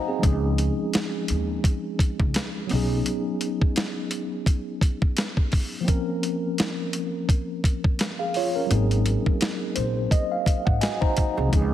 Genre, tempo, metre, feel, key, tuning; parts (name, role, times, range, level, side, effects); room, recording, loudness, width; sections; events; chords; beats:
hip hop, boom-bap hip-hop; 85 BPM; 4/4; swing 56% on 16ths; A4 = 438 Hz
mellow tine electric piano; accompaniment; 0.0-11.7 s; F3 to Bb5; -26 LUFS; equal; medium stereo tremolo, cassette tape
upright bass; bass; 0.2-3.0, 8.7-11.7 s; Ab1 to Eb2; -24 LUFS; equal
boom bap sampler-style drum kit; drums; 0.2-11.7 s; hi-hat, kick drum, snare drum; -23 LUFS; equal
light reverb; heavily compressed radio sound; -22 LUFS; side -12 dB against mid
0.0-11.5 A section
break 0.0
0.2 Dbadd9; 2.7 Cb6; 5.9 Bbmadd9; 8.7 Ab7
| 0.23 0.94 1.64 2.35 | 3.06 3.76 4.47 5.17 | 5.88 6.58 7.29 8.00 | 8.70 9.41 10.12 10.82 | 11.53